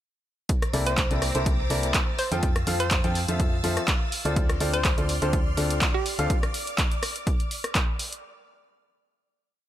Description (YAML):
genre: piano house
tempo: 124 BPM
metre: 4/4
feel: swing 54% on 16ths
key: D minor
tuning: A4 = 438 Hz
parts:
  - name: string machine, violins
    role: sustained chords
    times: 0.5-8.2 s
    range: C5 to A6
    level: -35 LUFS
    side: equal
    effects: ensemble chorus, sidechain pumping
  - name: electronic kick drum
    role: drums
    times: 0.5-7.9 s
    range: none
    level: -25 LUFS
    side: equal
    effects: none
  - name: punchy analog drum machine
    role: drums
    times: 0.5-8.2 s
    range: handclaps, hi-hat, rim click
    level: -28 LUFS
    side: equal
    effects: none
  - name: clear upright piano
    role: riff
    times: 0.7-6.3 s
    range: C3 to G5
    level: -29 LUFS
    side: left 1 dB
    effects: sidechain pumping
  - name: solid FM bass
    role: bass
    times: 0.7-6.3 s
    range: C2 to F2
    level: -28 LUFS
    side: equal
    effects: tube saturation, sidechain pumping
  - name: hollow square pluck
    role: melody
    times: 0.9-6.1 s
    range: G4 to C5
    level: -31 LUFS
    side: right 1 dB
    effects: chorus, ping-pong delay
room: little or no reverb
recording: none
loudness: -22 LUFS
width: side -12 dB against mid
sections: 0.5-8.2 groove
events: none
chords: 0.5 C13; 2.2 Fmaj7; 4.4 Dm7